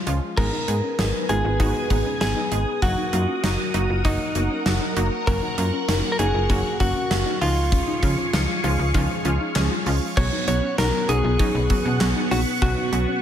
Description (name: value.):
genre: synth-pop.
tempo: 98 BPM.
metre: 4/4.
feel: straight.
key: unclear.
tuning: A4 = 440 Hz.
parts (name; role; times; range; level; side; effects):
wide unison pluck; accompaniment; 0.0-13.2 s; F3 to Ab4; -28 LUFS; right 2 dB; none.
slap-like FM bass; bass; 0.1-13.1 s; Gb1 to Db3; -24 LUFS; equal; none.
gated 80s drum kit; drums; 0.1-13.1 s; crash cymbal, handclaps, hi-hat, kick drum, snare drum; -25 LUFS; equal; none.
direct-recorded clean electric guitar; melody; 0.4-13.2 s; Eb4 to C#5; -26 LUFS; equal; ping-pong delay.
string machine, full ensemble; sustained chords; 0.4-13.2 s; Cb4 to Eb6; -28 LUFS; equal; phaser, ensemble chorus.
soft round pluck; arpeggios; 0.4-13.2 s; Bb3 to F4; -33 LUFS; left 6 dB; chorus, ping-pong delay.
room: light reverb, small room ambience.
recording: none.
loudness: -19 LUFS.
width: side -10 dB against mid.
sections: 0.4-10.2 A section; 10.2-13.2 B section.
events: none.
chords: 0.4 Abm; 2.8 Ebm/Gb; 5.3 Gb; 7.4 Db; 10.2 Bsus2.